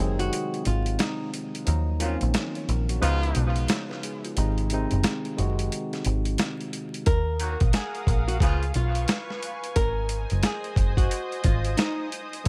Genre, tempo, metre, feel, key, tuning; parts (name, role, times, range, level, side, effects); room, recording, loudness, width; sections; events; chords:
hip hop, boom-bap hip-hop; 89 BPM; 4/4; swing 62% on 16ths; A4 = 439 Hz
flamenco guitar; melody; 0.0-1.3, 7.1-12.1 s; Eb4 to Bb4; -34 LUFS; equal; high-pass filter, low-pass filter, tape echo
tine electric piano; accompaniment; 0.0-7.1, 12.4-12.5 s; C3 to Db5; -33 LUFS; equal; high-pass filter, low-pass filter
deep dub picked electric bass; bass; 0.0-12.5 s; Gb1 to Eb2; -28 LUFS; equal
boom bap sampler-style drum kit; drums; 0.2-12.5 s; hi-hat, kick drum, snare drum; -29 LUFS; equal
clear horn section; stabs; 2.0-8.6 s; Bb2 to Gb4; -36 LUFS; equal; high-pass filter, low-pass filter, tape echo
lush unison pad; sustained chords; 7.5-12.5 s; Bb4 to Eb6; -37 LUFS; equal; chorus, high-pass filter, low-pass filter
little or no reverb; vinyl crackle; -26 LUFS; mono
0.0-12.5 A section
break 0.0-7.1
0.0 Ab; 1.7 Ebmadd9; 3.0 Db7; 4.4 Ab; 7.1 Ebmadd9; 8.4 Db7; 9.8 Ab